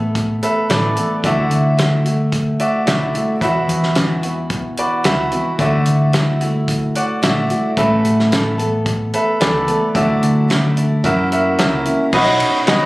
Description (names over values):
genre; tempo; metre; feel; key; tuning
folk rock and heartland rock; 110 BPM; 4/4; straight; unclear; A4 = 440 Hz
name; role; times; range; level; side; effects
picked steel-string acoustic guitar; accompaniment; 0.0-12.9 s; E2 to C#5; -19 LUFS; left 1 dB; none
hollow-body short-scale picked electric bass; bass; 0.0-12.4 s; A1 to F#2; -20 LUFS; equal; none
natural country drum kit; drums; 0.2-12.8 s; crash cymbal, hi-hat, kick drum, ride cymbal, snare drum; -20 LUFS; equal; none
bright concert grand piano; accompaniment; 0.4-12.9 s; F#4 to A#5; -19 LUFS; right 1 dB; none
room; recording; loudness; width
light reverb, small room ambience; recorded on a phone in the room, club reverb; -14 LUFS; side -20 dB against mid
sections
0.0-12.1 A section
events
grand piano fill 11.0-12.1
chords
0.0 Asus2; 1.2 Dadd9; 3.4 Esus2; 5.6 Dadd9; 7.8 Asus2; 10.0 Dadd9; 11.0 F#7; 12.1 Badd9